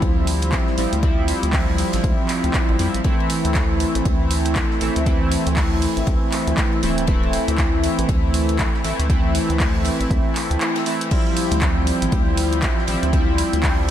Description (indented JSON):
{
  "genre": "deep house",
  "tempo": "119 BPM",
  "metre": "4/4",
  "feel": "swing 60% on 16ths",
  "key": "D minor",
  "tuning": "A4 = 440 Hz",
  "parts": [
    { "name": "chorused polysynth", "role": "stabs", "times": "0.0-13.9 s", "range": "E3 to E4", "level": "-21 LUFS", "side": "equal", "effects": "sidechain pumping, tape echo" },
    { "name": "rubbery square bass", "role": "bass", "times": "0.0-13.9 s", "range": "D1 to F2", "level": "-22 LUFS", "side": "equal", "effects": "tube saturation, sidechain pumping" },
    { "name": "deep reggae drum kit", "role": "drums", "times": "0.0-13.9 s", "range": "hi-hat, ride cymbal, snare drum", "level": "-36 LUFS", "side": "left 3 dB", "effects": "high-pass filter on cymbals, high-pass filter on hats, high-pass filter on snare, high-pass filter on room" },
    { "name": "electronic kick drum", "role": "drums", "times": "0.0-13.8 s", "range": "none", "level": "-21 LUFS", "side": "equal", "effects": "none" },
    { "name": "punchy analog drum machine", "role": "drums", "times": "0.0-13.8 s", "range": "crash cymbal, handclaps, hi-hat", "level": "-27 LUFS", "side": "right 1 dB", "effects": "none" },
    { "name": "analog string pad", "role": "texture", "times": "11.1-13.9 s", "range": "G5", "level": "-32 LUFS", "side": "right 1 dB", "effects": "ensemble chorus" }
  ],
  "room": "small room ambience",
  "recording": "none",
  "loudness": "-17 LUFS",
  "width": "side -10 dB against mid",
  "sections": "0.0-13.9 A section",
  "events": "none",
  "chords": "0.0 Dm11; 3.0 Am; 11.1 Dm11"
}